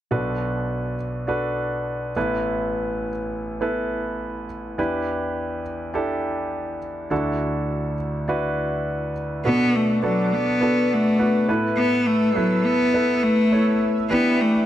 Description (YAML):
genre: pop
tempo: 103 BPM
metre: 4/4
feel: straight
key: B minor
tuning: A4 = 440 Hz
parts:
  - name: clear concert grand piano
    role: accompaniment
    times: 0.1-14.7 s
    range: A1 to C#5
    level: -23 LUFS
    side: equal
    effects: none
  - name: chorused pulse-width pad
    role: sustained chords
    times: 9.9-14.7 s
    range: B4 to E6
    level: -31 LUFS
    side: left 3 dB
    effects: none
  - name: clear cello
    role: melody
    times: 9.5-14.7 s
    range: F#3 to B3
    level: -19 LUFS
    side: left 1 dB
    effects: none
room: wet large studio reverb, RT60 0.9 s, small room ambience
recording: dark, warm production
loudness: -20 LUFS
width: side -12 dB against mid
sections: 0.1-9.4 A section; 9.4-14.7 B section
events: none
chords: 0.1 Bm7; 2.2 Asus2; 4.8 Em7; 7.1 Dadd9; 9.4 Bm7; 11.5 Asus2; 14.1 Em7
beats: | 0.12 0.70 1.28 1.87 | 2.45 3.03 3.62 4.20 | 4.78 5.36 5.95 6.53 | 7.11 7.70 8.28 8.86 | 9.45 10.03 10.61 11.19 | 11.78 12.36 12.94 13.52 | 14.11